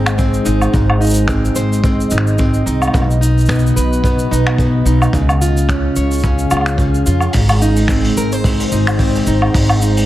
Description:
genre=folktronica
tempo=109 BPM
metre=4/4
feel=swing 56% on 16ths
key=Ab major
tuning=A4 = 441 Hz
part: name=warbly tape-like pad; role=sustained chords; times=0.0-10.1 s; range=B2 to F5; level=-21 LUFS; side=left 1 dB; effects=chorus, built-in reverb, vintage 12-bit sampler grit
part: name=fingerpicked plugged-in steel-string acoustic guitar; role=arpeggios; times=0.0-10.1 s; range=Ab2 to Db5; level=-18 LUFS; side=right 1 dB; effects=tape echo
part: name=upright bass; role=bass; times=0.0-10.1 s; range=Ab1 to F2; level=-16 LUFS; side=equal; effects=none
part: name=vintage brush drum kit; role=drums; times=0.1-10.1 s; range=cabasa, finger snaps, hi-hat, woodblock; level=-21 LUFS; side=equal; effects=none
part: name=kick drum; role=drums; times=0.2-9.7 s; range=none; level=-18 LUFS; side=equal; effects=none
room=light reverb, studio ambience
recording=none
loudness=-12 LUFS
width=side -14 dB against mid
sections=0.0-10.1 A section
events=none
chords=0.0 Ab; 2.9 B; 5.1 Db; 7.3 Ab

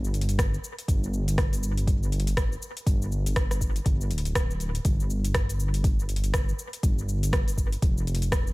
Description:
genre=afro house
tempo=121 BPM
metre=4/4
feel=swing 60% on 16ths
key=unclear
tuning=A4 = 441 Hz
part: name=dark detuned saw bass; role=bass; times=0.0-8.5 s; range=D1 to G1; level=-27 LUFS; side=equal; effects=tube saturation, sidechain pumping
part: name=afro-pop drum kit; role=drums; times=0.0-8.5 s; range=hi-hat, rim click, shaker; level=-33 LUFS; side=equal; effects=studio reverb, dub echo
part: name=electronic kick drum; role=drums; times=0.4-8.4 s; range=none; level=-25 LUFS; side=equal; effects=studio reverb
room=little or no reverb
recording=echo-heavy mix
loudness=-24 LUFS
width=side -22 dB against mid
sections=0.0-8.5 A section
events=none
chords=none

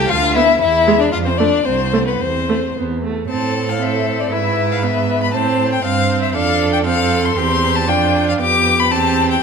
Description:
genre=quick classical-period movement for string quartet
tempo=117 BPM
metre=2/4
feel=rubato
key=A minor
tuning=A4 = 441 Hz
part: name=warm violin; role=melody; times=0.0-9.4 s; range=B4 to D6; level=-17 LUFS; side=left 6 dB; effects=none
part: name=rich violin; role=second line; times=0.0-9.4 s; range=B3 to C5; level=-22 LUFS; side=left 1 dB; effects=none
part: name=warm cello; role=bass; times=0.1-9.4 s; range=C2 to A2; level=-21 LUFS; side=right 5 dB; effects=none
part: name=warm viola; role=accompaniment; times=0.4-9.4 s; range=G#3 to E4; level=-20 LUFS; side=right 4 dB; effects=none
room=wet recital hall reverb, RT60 1.3 s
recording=minimal, uncompressed stereo recording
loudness=-14 LUFS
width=side -6 dB against mid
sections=0.0-3.3 A section; 3.3-9.4 B section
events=none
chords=0.1 Bdim/D; 0.6 E; 1.1 F; 2.2 Am/E; 2.8 E5; 3.3 Am; 4.3 E/G#; 5.3 Am; 6.3 F; 7.4 C/E; 7.9 Dm/F; 8.4 G7/F; 8.9 C/E

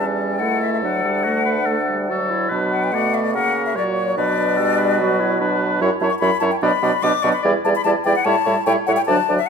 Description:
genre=quick classical-period movement for wind quintet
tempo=145 BPM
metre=4/4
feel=rubato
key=unclear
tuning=A4 = 445 Hz
part: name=mellow hollow silver concert flute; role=melody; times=0.0-9.5 s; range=C#5 to D6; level=-22 LUFS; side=left 7 dB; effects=none
part: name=warm oboe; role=second line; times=0.0-9.4 s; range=F#4 to D5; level=-24 LUFS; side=left 3 dB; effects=none
part: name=clear French horn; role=accompaniment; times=0.0-9.4 s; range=F#3 to A#3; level=-25 LUFS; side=right 1 dB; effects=none
part: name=warm clarinet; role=accompaniment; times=0.0-9.4 s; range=C#4 to F#4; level=-25 LUFS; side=right 6 dB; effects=none
part: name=mellow bassoon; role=bass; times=0.0-9.4 s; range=C#2 to C#3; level=-22 LUFS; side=right 3 dB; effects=none
room=moderate recital hall reverb, RT60 1.4 s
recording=minimal, uncompressed stereo recording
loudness=-16 LUFS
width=side -6 dB against mid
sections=0.0-9.5 A section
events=none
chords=0.0 A7/E; 0.8 D; 2.5 Bm; 3.3 F#/C#; 4.2 Bm; 5.8 F#5; 6.6 Bm; 7.4 Em7; 8.3 A7

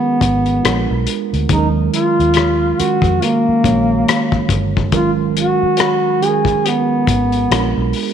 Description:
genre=R&B, neo-soul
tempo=70 BPM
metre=4/4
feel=swing 60% on 16ths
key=G# dorian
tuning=A4 = 437 Hz
part: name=dark duduk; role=melody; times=0.0-7.9 s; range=A#3 to G#4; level=-16 LUFS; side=left 1 dB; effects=none
part: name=mellow tine electric piano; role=accompaniment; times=0.0-8.1 s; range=D#3 to C#5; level=-20 LUFS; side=right 9 dB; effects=medium stereo tremolo
part: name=vintage muted fingered electric bass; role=bass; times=0.2-7.9 s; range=G1 to E#2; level=-19 LUFS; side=equal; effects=none
part: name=cloth-damped thuddy drum kit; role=drums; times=0.2-8.1 s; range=hi-hat, kick drum, rim click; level=-19 LUFS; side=left 5 dB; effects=none
room=moderate echo chamber reverb, RT60 1.7 s, studio reverb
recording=1960s-style stereo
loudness=-13 LUFS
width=side -8 dB against mid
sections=0.0-8.1 A section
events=none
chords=0.0 G#m11; 0.6 A#7b9; 1.5 D#m11; 4.9 G#m11; 7.5 A#7b9

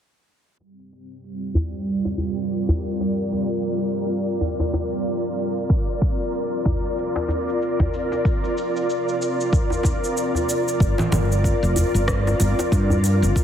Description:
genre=organic downtempo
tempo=94 BPM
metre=4/4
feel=swing 58% on 16ths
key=G minor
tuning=A4 = 439 Hz
part: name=ethereal airy pad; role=sustained chords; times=1.3-13.4 s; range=G3 to D5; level=-23 LUFS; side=equal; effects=ensemble chorus, built-in reverb, tremolo, sidechain pumping
part: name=organic electronic drum kit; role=drums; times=0.6-13.4 s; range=congas, hi-hat, rim click, shaker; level=-28 LUFS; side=right 1 dB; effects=overdrive
part: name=djembe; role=percussion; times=1.5-13.4 s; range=none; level=-25 LUFS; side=equal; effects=none
part: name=electronic kick drum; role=drums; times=5.7-13.4 s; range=none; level=-21 LUFS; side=equal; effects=none
part: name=woody fretless electric bass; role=bass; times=10.8-13.3 s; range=F1 to G2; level=-20 LUFS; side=equal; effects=sidechain pumping
room=moderate echo chamber reverb, RT60 2.5 s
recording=heavily compressed radio sound, multiband compression, low-pass filter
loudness=-20 LUFS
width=side -9 dB against mid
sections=0.6-10.8 A section; 10.8-13.4 B section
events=filter sweep 0.6-10.8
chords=0.6 Gm7; 5.7 Fsus4; 10.8 Gm7

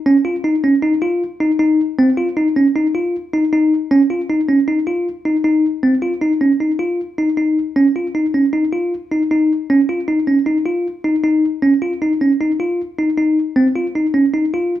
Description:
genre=progressive instrumental, progressive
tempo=155 BPM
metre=5/4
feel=straight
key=unclear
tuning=A4 = 440 Hz
part: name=bell-like tine electric piano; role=solo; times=0.1-14.7 s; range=C4 to F4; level=-14 LUFS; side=equal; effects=none
room=wet large studio reverb, RT60 0.8 s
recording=band playing live in one room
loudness=-14 LUFS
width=side -12 dB against mid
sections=0.0-5.8 A section; 5.8-14.8 B section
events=none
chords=none

